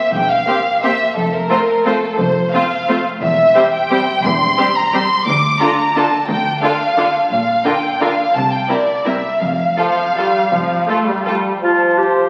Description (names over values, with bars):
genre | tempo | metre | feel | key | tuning
classical | 154-192 BPM | 3/4 | rubato | F major | A4 = 438 Hz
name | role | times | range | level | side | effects
warm studio violin section | melody | 0.0-11.3 s | A4 to D6 | -18 LUFS | equal | none
clear studio double bass section | bass | 0.1-10.8 s | E1 to D2 | -30 LUFS | equal | none
rich studio cello section | bass | 0.1-10.8 s | D2 to C3 | -28 LUFS | equal | none
rich studio violin section | second line | 0.5-11.3 s | E4 to C5 | -24 LUFS | equal | none
rich studio viola section | accompaniment | 0.5-11.6 s | D3 to D4 | -24 LUFS | equal | none
clear clarinet | second line | 11.6-12.3 s | F4 to G4 | -16 LUFS | equal | none
dark cor anglais | second line | 11.6-12.3 s | C5 | -22 LUFS | equal | none
large flute ensemble | second line | 11.6-12.3 s | A5 | -24 LUFS | equal | none
mellow bassoon | accompaniment | 11.6-12.3 s | F3 | -21 LUFS | equal | none
room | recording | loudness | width
wet concert hall reverb, RT60 2.2 s | very old 78 rpm record, vinyl crackle, nothing above 10.4 kHz | -16 LUFS | mono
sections
0.0-11.6 A section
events
none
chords
0.0 C7/E; 1.2 F; 3.2 C/E; 5.3 Dm; 7.3 Bb; 8.3 Cadd9; 9.4 N.C.; 11.6 F